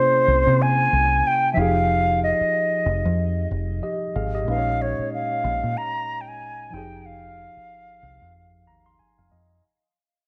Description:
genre	R&B, neo-soul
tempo	93 BPM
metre	4/4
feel	swing 59% on 16ths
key	F minor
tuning	A4 = 441 Hz
part	reedy concert flute	melody	0.0-9.0 s	C5 to Bb5	-24 LUFS	equal	none
part	tine electric piano	accompaniment	0.0-9.7 s	Bb2 to C6	-31 LUFS	equal	none
part	deep dub fingered electric bass	bass	0.3-9.6 s	F1 to C3	-26 LUFS	equal	none
room	moderate echo chamber reverb, RT60 1.4 s, studio ambience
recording	none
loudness	-22 LUFS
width	mono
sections	0.0-9.6 A section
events	fade-out 0.0-9.6; tine electric piano fill 8.3-9.6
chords	0.0 C7b9b13; 1.6 Fm9; 4.5 Bbm7; 6.7 Fm9

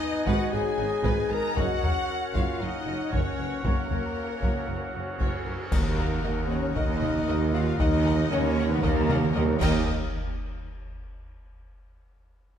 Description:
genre	cinematic, epic orchestral film score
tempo	116 BPM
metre	4/4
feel	straight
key	Eb minor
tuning	A4 = 440 Hz
part	rich symphonic violin section	melody	0.0-9.9 s	Bb4 to Bb5	-39 LUFS	left 3 dB	none
part	mellow hollow concert flute	second line	0.0-9.9 s	Bb4 to F5	-38 LUFS	left 1 dB	none
part	warm symphonic violin section	second line	0.0-9.9 s	Bb4 to Bb5	-38 LUFS	left 4 dB	none
part	rich symphonic viola section	accompaniment	0.0-9.9 s	Eb4 to Gb5	-39 LUFS	equal	none
part	mellow French horn section	sustained chords	0.0-9.8 s	Bb3 to Bb4	-31 LUFS	left 4 dB	none
part	pipe organ, soft reed	sustained chords	0.0-9.9 s	Cb4 to Ab5	-36 LUFS	equal	none
part	dark trumpet	stabs	0.0-5.2 s	Bb3 to Bb4	-37 LUFS	right 2 dB	none
part	mellow tuba	bass	0.3-9.8 s	Gb1 to Eb2	-33 LUFS	right 3 dB	none
part	rich symphonic cello section	bass	0.3-9.9 s	Eb2 to Ab2	-33 LUFS	right 3 dB	none
part	rich symphonic double bass section	bass	0.3-9.9 s	Gb1 to Eb2	-32 LUFS	right 3 dB	none
part	taiko ensemble	drums	0.3-10.6 s	none	-30 LUFS	left 1 dB	none
part	cymbal swell, clash cymbals and concert bass drum	percussion	1.6-10.6 s	none	-35 LUFS	equal	none
part	timpani	percussion	5.7-9.9 s	Eb3	-33 LUFS	equal	none
room	moderate scoring stage reverb, RT60 1.9 s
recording	none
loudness	-24 LUFS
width	side -9 dB against mid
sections	0.0-5.7 A section; 5.7-9.9 B section; 9.9-12.0 C section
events	timpani fill 5.7-9.9; band accent 5.7-6.2, 9.9-10.4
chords	0.0 Abm; 1.6 Gb; 5.7 Ebm; 9.6 Eb; 9.9 N.C.

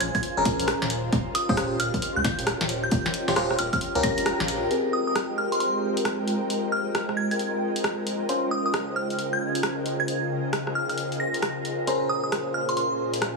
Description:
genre	UK garage, two-step garage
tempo	134 BPM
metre	4/4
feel	swing 64% on 16ths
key	Ab major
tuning	A4 = 440 Hz
part	glassy synth bell	melody	0.0-12.9 s	C6 to Bb6	-29 LUFS	right 1 dB	chorus, tremolo, dub echo
part	soft string machine	sustained chords	0.0-13.4 s	Bb2 to G5	-33 LUFS	right 1 dB	phaser, ensemble chorus, sidechain pumping
part	rubbery square bass	bass	0.0-4.7 s	Eb1 to Db2	-33 LUFS	equal	none
part	punchy analog drum machine	drums	0.0-13.3 s	hi-hat, rim click, snare drum	-29 LUFS	equal	none
part	ethereal airy pad	texture	0.0-13.4 s	Db3 to Ab5	-31 LUFS	left 1 dB	ensemble chorus, built-in reverb, tremolo, sidechain pumping
part	electronic kick drum	drums	0.1-4.2 s	none	-27 LUFS	equal	none
part	FM electric piano	stabs	0.4-13.4 s	C4 to C5	-29 LUFS	equal	chorus, phaser, low-pass filter, dub echo
room	moderate lush hall reverb, RT60 2.0 s, digital ambience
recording	heavily compressed radio sound, multiband compression, small room ambience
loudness	-23 LUFS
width	side -2 dB against mid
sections	0.0-4.7 A section; 4.7-13.4 B section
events	band accent 4.3; filter sweep on FM electric piano 4.7-13.4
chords	0.0 Bbm9; 0.9 Eb13; 4.7 Abmaj9; 8.3 Dbmaj7; 11.9 Bbm9

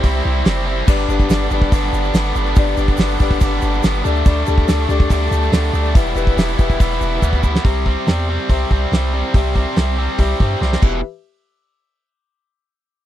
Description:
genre	classic rock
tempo	142 BPM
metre	4/4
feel	straight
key	unclear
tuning	A4 = 440 Hz
part	dark upright piano	accompaniment	0.0-11.0 s	D4 to E5	-25 LUFS	left 12 dB	none
part	bright tonewheel organ	sustained chords	0.0-7.6 s	D4 to E5	-29 LUFS	equal	slow rotary speaker, overdrive, chorus vibrato
part	biting overdriven guitar	riff	0.0-11.0 s	E2 to E4	-21 LUFS	right 1 dB	none
part	punchy sub bass	bass	0.0-11.0 s	E1 to G2	-19 LUFS	equal	none
part	damped 70s drum kit	drums	0.0-10.9 s	crash cymbal, hi-hat, kick drum, snare drum	-14 LUFS	equal	none
part	egg shaker	percussion	0.9-7.6 s	none	-40 LUFS	right 22 dB	none
room	little or no reverb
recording	dry, close 1970s-style studio recording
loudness	-14 LUFS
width	side -12 dB against mid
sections	0.0-7.6 A section; 7.6-11.0 B section; 11.0-12.7 C section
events	drum fill 7.2-7.6, 10.6-11.0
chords	0.0 C; 0.9 G; 4.0 Dsus4; 5.9 Em; 7.6 C; 10.8 Em; 11.0 N.C.

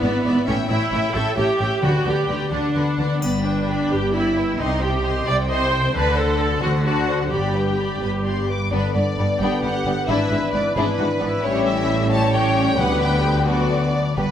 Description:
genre	cinematic, heroic adventure film score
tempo	88 BPM (dotted quarters)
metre	6/8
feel	straight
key	G major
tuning	A4 = 440 Hz
part	warm symphonic violin section	melody	0.0-14.3 s	B4 to D6	-27 LUFS	left 2 dB	none
part	warm symphonic violin section	second line	0.0-14.2 s	G3 to E5	-26 LUFS	left 3 dB	none
part	rich symphonic viola section	accompaniment	0.0-13.8 s	B3 to D5	-23 LUFS	right 1 dB	none
part	concert harp	arpeggios	0.0-14.3 s	G2 to Eb5	-28 LUFS	left 4 dB	none
part	rich symphonic cello section	bass	0.0-14.3 s	D2 to D3	-26 LUFS	right 2 dB	none
part	rich symphonic double bass section	bass	0.0-14.3 s	G1 to D2	-26 LUFS	right 2 dB	none
part	timpani	percussion	1.8-2.5, 12.8-13.4 s	D3	-28 LUFS	right 1 dB	none
part	triangle	percussion	3.2-4.1 s	none	-37 LUFS	left 1 dB	none
part	warm trombone section	sustained chords	8.7-13.9 s	D3 to D4	-27 LUFS	right 2 dB	none
room	wet scoring stage reverb, RT60 1.7 s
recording	none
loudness	-18 LUFS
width	side -9 dB against mid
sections	0.0-8.7 A section; 8.7-14.3 A section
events	none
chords	0.5 A7; 1.8 G/D; 2.5 D6; 3.2 G; 4.6 Cm; 5.9 D7; 7.3 G; 10.1 E7/G#; 11.4 A7; 12.8 G/D; 13.5 D6

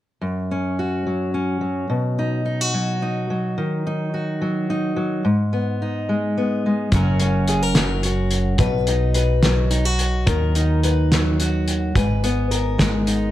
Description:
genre	indie folk with a building arrangement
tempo	72 BPM (dotted quarters)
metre	6/8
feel	straight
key	F# major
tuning	A4 = 440 Hz
part	fingerpicked steel-string acoustic guitar	accompaniment	0.2-13.3 s	F#2 to B4	-20 LUFS	left 1 dB	none
part	upright bass	bass	6.9-13.3 s	F#1 to D#2	-21 LUFS	equal	none
part	cloth-damped thuddy drum kit	drums	6.9-13.2 s	hi-hat, kick drum, snare drum	-21 LUFS	equal	none
room	light reverb, studio reverb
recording	dark, warm production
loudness	-18 LUFS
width	side -14 dB against mid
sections	0.2-6.9 A section; 6.9-13.3 B section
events	none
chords	0.2 F#5; 1.9 B; 3.6 D#m; 5.3 G#m; 6.9 F#; 8.6 B; 10.3 D#m; 12.0 G#m

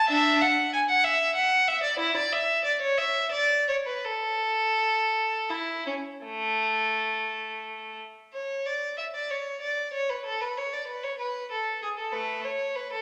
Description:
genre	classical, baroque-style suite movement for unaccompanied violin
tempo	54-64 BPM (dotted quarters)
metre	12/8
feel	rubato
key	A major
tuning	A4 = 440 Hz
part	rich violin	solo	0.0-13.0 s	A3 to G#5	-27 LUFS	equal	none
room	wet recital hall reverb, RT60 1.6 s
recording	none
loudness	-27 LUFS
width	mono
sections	0.0-8.3 A section; 8.3-13.0 B section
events	none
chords	none

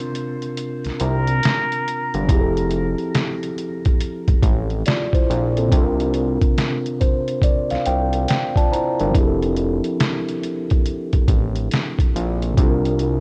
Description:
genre	lo-fi hip hop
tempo	70 BPM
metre	4/4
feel	swing 64% on 16ths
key	F major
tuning	A4 = 439 Hz
part	mellow tine electric piano	accompaniment	0.0-13.2 s	C3 to Bb5	-25 LUFS	equal	cassette tape, low-pass filter
part	trip hop sampler-style drum kit	drums	0.0-13.2 s	hi-hat, kick drum, snare drum	-21 LUFS	equal	vintage 12-bit sampler grit
part	fat analog bass	bass	0.9-13.2 s	F1 to C2	-24 LUFS	equal	none
part	trumpet with straight mute	melody	1.0-2.2 s	Bb4	-29 LUFS	equal	low-pass filter, tape echo
room	little or no reverb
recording	cassette tape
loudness	-20 LUFS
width	mono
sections	0.0-13.2 A section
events	break 0.0-2.3; tine electric piano fill 6.6-9.1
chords	0.0 C9sus4; 2.3 Fmaj9; 5.7 C9sus4; 9.1 Fmaj9; 12.6 C9sus4

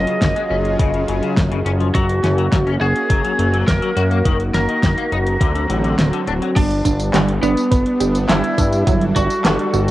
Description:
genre	synthwave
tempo	104 BPM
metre	4/4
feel	straight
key	F# major, G major from 6.6 s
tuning	A4 = 444 Hz
part	lightly driven lead guitar	melody	0.0-9.9 s	B3 to D#5	-21 LUFS	equal	cassette tape, analog delay
part	soft supersaw	sustained chords	0.0-9.9 s	D3 to A4	-23 LUFS	equal	sidechain pumping, cassette tape
part	fat analog bass	bass	0.0-9.9 s	D1 to G2	-20 LUFS	equal	sidechain pumping
part	clean electric guitar	riff	0.1-6.5 s	C#3 to F#4	-26 LUFS	left 8 dB	ensemble chorus, vintage 12-bit sampler grit, cassette tape, analog delay
part	pop drum kit	drums	0.1-9.9 s	crash cymbal, handclaps, hi-hat, snare drum, tambourine	-22 LUFS	equal	none
part	electronic kick drum	drums	0.2-9.3 s	none	-19 LUFS	equal	overdrive
part	analog pluck	arpeggios	6.6-9.9 s	F#3 to B4	-23 LUFS	right 7 dB	chorus, cassette tape, analog delay
room	moderate spring reverb, RT60 2.4 s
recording	home recording on cassette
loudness	-15 LUFS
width	side -15 dB against mid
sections	0.0-6.6 A section; 6.6-9.9 B section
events	kick drops out 6.0-6.6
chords	0.0 C#/F#; 1.9 F#; 4.3 D#m/F#; 5.4 D7; 6.6 G; 8.9 D/G

